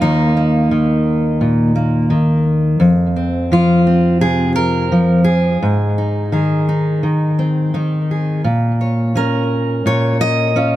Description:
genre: folk, solo fingerstyle acoustic guitar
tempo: 85 BPM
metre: 4/4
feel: straight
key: unclear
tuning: A4 = 438 Hz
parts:
  - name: fingerpicked steel-string acoustic guitar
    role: solo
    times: 0.0-10.8 s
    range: Eb2 to Eb5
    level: -13 LUFS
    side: equal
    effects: tape echo
room: light reverb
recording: close, detailed microphones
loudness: -13 LUFS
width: side -14 dB against mid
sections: 0.0-10.8 A section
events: none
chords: 0.0 Eb5; 2.8 Fm; 5.6 Ab; 8.4 Bbm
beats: | 0.01 0.71 1.42 2.12 | 2.82 3.52 4.22 4.92 | 5.62 6.32 7.03 7.74 | 8.45 9.15 9.86 10.56

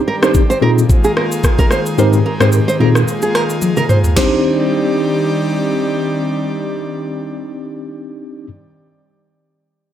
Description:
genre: afrobeats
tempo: 110 BPM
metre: 4/4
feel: swing 55% on 16ths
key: C minor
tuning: A4 = 444 Hz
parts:
  - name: airy breathy pad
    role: sustained chords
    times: 0.0-8.5 s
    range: Eb3 to D5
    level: -20 LUFS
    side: equal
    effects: chorus
  - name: nylon-string guitar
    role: riff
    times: 0.1-5.8 s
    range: Ab4 to C5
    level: -19 LUFS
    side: right 2 dB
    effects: tape echo
  - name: tine electric piano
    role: accompaniment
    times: 0.2-8.5 s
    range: Ab2 to Bb4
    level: -16 LUFS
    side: left 1 dB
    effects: medium stereo tremolo
  - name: afro-pop drum kit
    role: drums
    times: 0.2-4.3 s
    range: crash cymbal, kick drum, rim click, shaker, snare drum, toms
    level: -15 LUFS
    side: equal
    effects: none
room: light reverb, digital ambience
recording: none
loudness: -12 LUFS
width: side -10 dB against mid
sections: 0.0-4.2 A section; 4.2-8.5 B section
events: drum fill 3.6-4.2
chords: 0.0 Cmadd9; 0.6 Bb7sus4; 2.0 Abmaj7; 2.8 Bb7sus4; 4.2 Cmadd9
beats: 0.35 0.89 1.44 | 1.98 2.53 3.07 3.62 | 4.16 4.71 5.25 5.80 | 6.35 6.89 7.44 7.98

